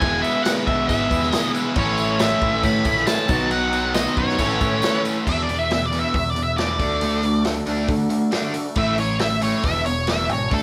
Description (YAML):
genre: classic rock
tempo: 137 BPM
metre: 4/4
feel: straight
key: A lydian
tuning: A4 = 440 Hz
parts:
  - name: octave-fuzz lead guitar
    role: melody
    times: 0.0-10.6 s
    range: A4 to B5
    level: -25 LUFS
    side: equal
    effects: distortion
  - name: reed electric piano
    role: accompaniment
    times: 0.0-5.2 s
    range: D#4 to E5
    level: -33 LUFS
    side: equal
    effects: harmonic tremolo
  - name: tonewheel organ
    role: sustained chords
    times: 0.0-10.6 s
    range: B3 to C#5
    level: -37 LUFS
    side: equal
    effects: none
  - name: crunchy overdriven guitar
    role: riff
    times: 0.0-10.6 s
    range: E2 to F#4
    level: -29 LUFS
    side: equal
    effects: none
  - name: overdriven electric guitar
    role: riff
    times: 0.0-10.6 s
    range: E2 to A4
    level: -30 LUFS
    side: equal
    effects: none
  - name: tight distorted guitar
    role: riff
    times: 0.0-5.3 s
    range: A2 to F#4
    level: -32 LUFS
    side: equal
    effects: none
  - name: growling picked electric bass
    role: bass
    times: 0.0-10.6 s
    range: E1 to D3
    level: -29 LUFS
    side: equal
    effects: overdrive
  - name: vintage drum kit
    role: drums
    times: 0.0-10.6 s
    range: crash cymbal, hi-hat, kick drum, snare drum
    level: -27 LUFS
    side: equal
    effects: none
  - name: tambourine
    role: percussion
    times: 0.0-5.1 s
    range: none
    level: -43 LUFS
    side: equal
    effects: none
room: moderate studio reverb, RT60 0.8 s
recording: band playing live in one room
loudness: -21 LUFS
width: mono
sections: 0.0-5.3 A section; 5.3-10.6 B section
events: lead electric guitar solo 5.3-10.6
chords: 0.0 E; 1.8 A; 3.3 B; 4.4 Aadd9; 5.3 E; 6.8 D; 8.8 A; 9.6 E